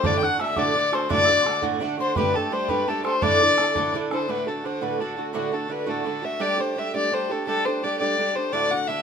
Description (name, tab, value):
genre	celtic folk, Celtic jig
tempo	113 BPM (dotted quarters)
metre	6/8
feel	straight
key	D mixolydian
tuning	A4 = 440 Hz
part	dark fiddle	melody	0.0-9.0 s	F#4 to G5	-23 LUFS	left 3 dB	none
part	mellow hollow tin whistle	second line	0.0-3.9 s	A5 to F#6	-28 LUFS	left 3 dB	none
part	fingerpicked twelve-string acoustic guitar	accompaniment	0.0-9.0 s	D2 to A4	-26 LUFS	right 5 dB	none
part	bodhran	percussion	0.0-4.2 s	none	-29 LUFS	right 3 dB	none
room	moderate studio reverb, RT60 0.8 s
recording	minimal, uncompressed stereo recording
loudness	-21 LUFS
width	side -7 dB against mid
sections	0.0-4.3 A section; 4.3-9.0 A section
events	none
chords	0.0 D; 2.2 Gsus2; 3.2 Dsus2; 4.3 D; 6.4 Gsus2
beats	| 0.04 0.57 | 1.10 1.62 | 2.15 2.69 | 3.21 3.75 | 4.28 4.81 | 5.34 5.87 | 6.41 6.94 | 7.47 8.00 | 8.53